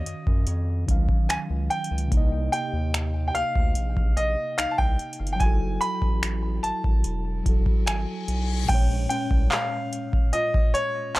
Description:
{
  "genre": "contemporary R&B",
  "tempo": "73 BPM",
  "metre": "4/4",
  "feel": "straight",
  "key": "unclear",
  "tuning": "A4 = 439 Hz",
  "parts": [
    { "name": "bright grand piano", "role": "melody", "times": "0.0-11.2 s", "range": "Db5 to Cb6", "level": "-28 LUFS", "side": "equal", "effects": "none" },
    { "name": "mellow tine electric piano", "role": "accompaniment", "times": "0.0-11.2 s", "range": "Bb2 to F5", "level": "-32 LUFS", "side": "equal", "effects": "medium stereo tremolo" },
    { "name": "round analog bass", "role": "bass", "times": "0.0-11.2 s", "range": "Fb1 to Gb2", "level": "-27 LUFS", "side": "equal", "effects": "none" },
    { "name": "downlifter and reverse cymbal", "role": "sound effects", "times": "0.2-8.7 s", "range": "none", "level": "-38 LUFS", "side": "left 7 dB", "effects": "none" },
    { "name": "booming analog drum machine", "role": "drums", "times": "0.1-11.2 s", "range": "crash cymbal, finger snaps, handclaps, hi-hat, kick drum", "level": "-22 LUFS", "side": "equal", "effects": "overdrive" },
    { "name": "synth chime", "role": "texture", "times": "2.5-11.2 s", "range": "Db4 to G4", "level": "-40 LUFS", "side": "left 2 dB", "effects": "ensemble chorus, analog delay" }
  ],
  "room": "little or no reverb",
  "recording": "dry, gritty hardware recording",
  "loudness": "-22 LUFS",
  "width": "side -18 dB against mid",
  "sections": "0.0-8.7 A section; 8.7-11.2 B section",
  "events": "reverse cymbal 7.8-8.7",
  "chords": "0.0 Ebm9; 2.1 Cm7; 5.4 Gbm9; 8.7 Bbm7",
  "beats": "0.47 1.29 | 2.12 2.94 3.76 4.58 | 5.40 6.23 7.05 7.87 | 8.69 9.51 10.34 11.16"
}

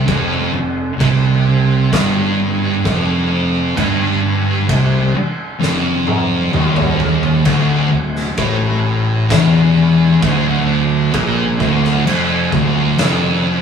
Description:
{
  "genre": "stoner and doom metal",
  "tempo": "65 BPM",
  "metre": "4/4",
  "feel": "straight",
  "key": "unclear",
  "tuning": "A4 = 439 Hz",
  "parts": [
    { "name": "thick fuzz guitar", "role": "riff", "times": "0.0-13.6 s", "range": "D2 to C3", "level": "-17 LUFS", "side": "left 4 dB", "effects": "distortion" },
    { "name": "thick fuzz guitar", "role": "riff", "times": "0.0-13.6 s", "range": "D2 to C3", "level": "-17 LUFS", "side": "right 5 dB", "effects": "distortion" },
    { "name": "fretless electric bass", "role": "bass", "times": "0.0-13.6 s", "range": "D1 to C2", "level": "-23 LUFS", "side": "right 1 dB", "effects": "overdrive" },
    { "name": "oversized low-tuned drum kit", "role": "drums", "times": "0.1-13.2 s", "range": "crash cymbal, kick drum, snare drum, toms", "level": "-21 LUFS", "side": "equal", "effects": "none" }
  ],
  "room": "moderate stone room reverb, RT60 1.4 s",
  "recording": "rough rehearsal-room recording, small room ambience",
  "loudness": "-13 LUFS",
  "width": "side -7 dB against mid",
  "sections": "0.0-13.6 A section",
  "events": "drum fill 5.6-7.5",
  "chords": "0.1 F5; 7.5 Dm",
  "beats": "| 0.07 1.00 1.92 2.85 | 3.77 4.69 5.61 6.54 | 7.46 8.38 9.30 10.22 | 11.14 12.06 12.98"
}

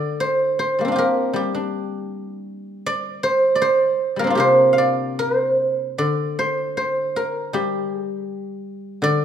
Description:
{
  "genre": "chinese traditional, Chinese solo plucked strings",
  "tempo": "75-81 BPM",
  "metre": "2/4",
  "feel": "rubato",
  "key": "C shang mode",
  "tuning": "A4 = 444 Hz",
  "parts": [
    { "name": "guzheng", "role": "solo", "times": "0.0-9.2 s", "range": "C3 to F5", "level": "-18 LUFS", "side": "right 1 dB", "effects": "none" }
  ],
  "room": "light reverb",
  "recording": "minimal, uncompressed stereo recording",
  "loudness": "-18 LUFS",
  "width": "side -8 dB against mid",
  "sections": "0.0-9.2 A section",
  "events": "none",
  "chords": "none",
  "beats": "0.57 | 1.34 2.10 | 2.85 3.62 | 4.40 5.20 | 6.00 6.79 | 7.55 8.29 | 9.04"
}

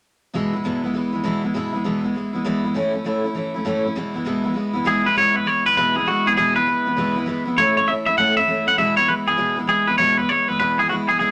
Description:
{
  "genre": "rock",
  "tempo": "199 BPM",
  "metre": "4/4",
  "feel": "swing 63% on 8ths",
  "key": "E major",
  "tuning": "A4 = 438 Hz",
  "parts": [
    { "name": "picked steel-string acoustic guitar", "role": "accompaniment", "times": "0.3-11.3 s", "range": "E2 to E4", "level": "-24 LUFS", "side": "equal", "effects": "none" },
    { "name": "twangy electric guitar", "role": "melody", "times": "4.9-11.3 s", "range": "F#4 to F#5", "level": "-20 LUFS", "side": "equal", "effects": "none" }
  ],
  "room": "moderate studio reverb, RT60 0.8 s",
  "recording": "none",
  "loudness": "-20 LUFS",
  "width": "mono",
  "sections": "0.3-5.2 A section; 5.2-11.3 B section",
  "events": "none",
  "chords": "0.3 E; 2.8 A; 4.0 E; 7.6 A; 8.8 E",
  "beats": "| 0.34 0.65 0.95 1.25 | 1.55 1.85 2.15 2.45 | 2.75 3.06 3.36 3.66 | 3.96 4.26 4.56 4.87 | 5.17 5.47 5.77 6.07 | 6.37 6.67 6.97 7.28 | 7.58 7.88 8.18 8.48 | 8.78 9.08 9.38 9.69 | 9.99 10.29 10.59 10.89 | 11.19"
}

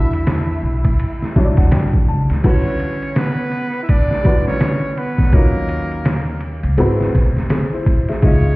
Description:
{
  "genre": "hip hop, jazz-hop",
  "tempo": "83 BPM",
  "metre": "4/4",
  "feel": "swing 60% on 16ths",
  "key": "E dorian",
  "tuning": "A4 = 440 Hz",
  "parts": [
    { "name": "trumpet with metal mute", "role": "melody", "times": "0.0-8.6 s", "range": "A#4 to E5", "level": "-29 LUFS", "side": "equal", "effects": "tape echo" },
    { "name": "growling tenor saxophone", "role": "second line", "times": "0.0-8.6 s", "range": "A#3 to E4", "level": "-26 LUFS", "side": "right 2 dB", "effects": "plate reverb, tape echo" },
    { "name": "warm upright piano", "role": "accompaniment", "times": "0.0-8.6 s", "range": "C#3 to A5", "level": "-22 LUFS", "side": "left 1 dB", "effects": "plate reverb" },
    { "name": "upright bass", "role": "bass", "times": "0.0-8.6 s", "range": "E1 to G2", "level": "-19 LUFS", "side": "equal", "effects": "none" },
    { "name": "trip hop sampler-style drum kit", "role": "drums", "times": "0.1-8.4 s", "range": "crash cymbal, hi-hat, kick drum, ride cymbal, snare drum", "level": "-16 LUFS", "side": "equal", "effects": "none" }
  ],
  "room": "light reverb",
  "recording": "heard muffled through a wall, stone room reverb, EQ",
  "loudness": "-14 LUFS",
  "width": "side -21 dB against mid",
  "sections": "0.0-2.4 A section; 2.4-8.6 B section",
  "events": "upright piano fill 1.0-2.4",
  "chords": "0.0 Em7; 2.4 Em9; 5.3 D#m9; 6.8 G#7alt",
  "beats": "0.27 1.00 1.72 | 2.44 3.17 3.89 4.61 | 5.33 6.06 6.78 7.50 | 8.22"
}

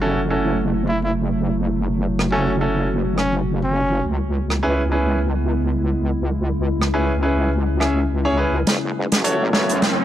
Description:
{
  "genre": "glitch hop",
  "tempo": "104 BPM",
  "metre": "4/4",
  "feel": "swing 56% on 16ths",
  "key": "F# minor",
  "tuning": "A4 = 442 Hz",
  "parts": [
    { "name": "warbly tape-like pad", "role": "sustained chords", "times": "0.0-10.0 s", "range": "C#3 to F#4", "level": "-24 LUFS", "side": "equal", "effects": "chorus, built-in reverb" },
    { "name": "clear baby grand piano", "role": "stabs", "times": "0.0-9.8 s", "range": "C#4 to E5", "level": "-22 LUFS", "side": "right 1 dB", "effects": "vintage 12-bit sampler grit, low-pass filter, tape echo" },
    { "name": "wobble bass", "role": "bass", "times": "0.0-10.0 s", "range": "F#1 to F#2", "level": "-22 LUFS", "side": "equal", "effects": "chorus, tube saturation, high-pass filter" },
    { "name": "warm trumpet", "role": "melody", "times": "0.9-4.1 s", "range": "C#4 to E4", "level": "-26 LUFS", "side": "equal", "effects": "tape echo" },
    { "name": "warm soul drum kit", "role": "drums", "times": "2.2-10.0 s", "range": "hi-hat, rim click, snare drum", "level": "-20 LUFS", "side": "right 1 dB", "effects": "none" },
    { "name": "riser", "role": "sound effects", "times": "9.0-10.0 s", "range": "none", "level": "-26 LUFS", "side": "equal", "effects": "none" }
  ],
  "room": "small room ambience",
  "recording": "none",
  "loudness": "-18 LUFS",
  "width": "side -12 dB against mid",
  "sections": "0.0-8.7 A section; 8.7-10.0 B section",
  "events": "build-up 8.7-10.0; drum fill 8.7-10.0; filter sweep on grand piano 8.7-10.0; riser 9.0-10.0",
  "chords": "0.0 F#m7; 4.1 C#m7; 8.7 F#m7",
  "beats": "0.01 0.59 1.17 | 1.75 2.32 2.90 3.48 | 4.05 4.63 5.21 5.78 | 6.36 6.94 7.51 8.09 | 8.67 9.25 9.82"
}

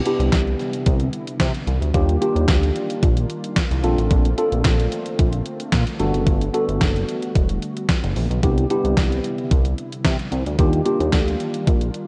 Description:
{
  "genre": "early-eighties boogie funk",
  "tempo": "111 BPM",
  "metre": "4/4",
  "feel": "straight",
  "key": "unclear",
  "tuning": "A4 = 441 Hz",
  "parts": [
    { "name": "warm analog pad", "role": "sustained chords", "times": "0.0-12.1 s", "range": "C3 to F#4", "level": "-33 LUFS", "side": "equal", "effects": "chorus" },
    { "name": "tine electric piano", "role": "accompaniment", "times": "0.1-11.7 s", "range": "Bb3 to A4", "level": "-26 LUFS", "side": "equal", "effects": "phaser" },
    { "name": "crisp 8-bit digital drum machine", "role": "drums", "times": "0.1-12.1 s", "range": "handclaps, hi-hat, kick drum, snare drum", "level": "-23 LUFS", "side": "equal", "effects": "overdrive" },
    { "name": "chorused synth bass", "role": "bass", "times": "0.2-11.9 s", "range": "E1 to C3", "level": "-23 LUFS", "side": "equal", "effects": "none" }
  ],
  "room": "moderate concert hall reverb, RT60 2.3 s",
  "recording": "big arena sound, cassette tape, nothing above 10.6 kHz",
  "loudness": "-20 LUFS",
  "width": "mono",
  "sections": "0.0-12.1 A section",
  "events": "none",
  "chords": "0.0 Cmaj9; 1.9 Ebmaj9; 3.8 Bbmaj9; 6.0 Gmaj9; 8.4 Cmaj9; 10.6 Ebmaj9",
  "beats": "0.32 0.86 1.40 | 1.94 2.48 3.02 3.57 | 4.11 4.65 5.19 5.73 | 6.27 6.81 7.35 7.89 | 8.43 8.97 9.51 10.05 | 10.59 11.13 11.67"
}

